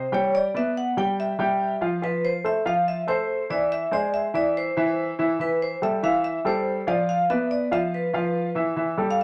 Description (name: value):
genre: jazz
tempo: 142 BPM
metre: 4/4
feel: straight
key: unclear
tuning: A4 = 440 Hz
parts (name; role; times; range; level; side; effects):
- vibraphone with medium hard mallets; melody; 0.0-9.2 s; B4 to G5; -27 LUFS; equal; none
- warm baby grand piano; accompaniment; 0.0-9.2 s; E3 to G5; -27 LUFS; equal; none
room: moderate studio reverb, RT60 0.5 s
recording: none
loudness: -24 LUFS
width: mono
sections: 0.0-8.8 A section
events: none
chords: 0.3 Gmaj7; 1.2 Fsus2; 2.0 Dm9 (rootless); 3.7 Eaug; 5.4 Am7; 7.1 Dm69